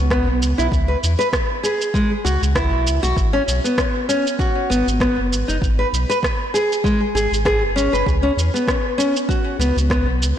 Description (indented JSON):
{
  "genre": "organic downtempo",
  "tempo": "98 BPM",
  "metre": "4/4",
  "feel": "swing 55% on 16ths",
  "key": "C# minor",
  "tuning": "A4 = 441 Hz",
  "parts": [
    { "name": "warm sub bass", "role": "bass", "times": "0.0-10.3 s", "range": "F#1 to E2", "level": "-20 LUFS", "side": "equal", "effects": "none" },
    { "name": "nylon-string guitar", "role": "arpeggios", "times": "0.1-10.1 s", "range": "G#3 to B4", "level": "-19 LUFS", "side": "equal", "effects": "vintage 12-bit sampler grit, ping-pong delay, shimmer reverb" },
    { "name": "electronic kick drum", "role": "drums", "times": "0.1-10.0 s", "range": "none", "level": "-22 LUFS", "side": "equal", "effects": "none" },
    { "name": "electronic rim click and shaker", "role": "drums", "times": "0.1-10.4 s", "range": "none", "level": "-25 LUFS", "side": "right 1 dB", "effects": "soft clipping on snare" }
  ],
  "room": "moderate lush hall reverb, RT60 2.1 s",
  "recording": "blown-out, overdriven recording, overdrive",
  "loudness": "-16 LUFS",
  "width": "side -10 dB against mid",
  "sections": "0.0-10.4 A section",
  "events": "none",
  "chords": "0.0 C#m7; 3.2 G#m7; 8.1 C#7(no3)"
}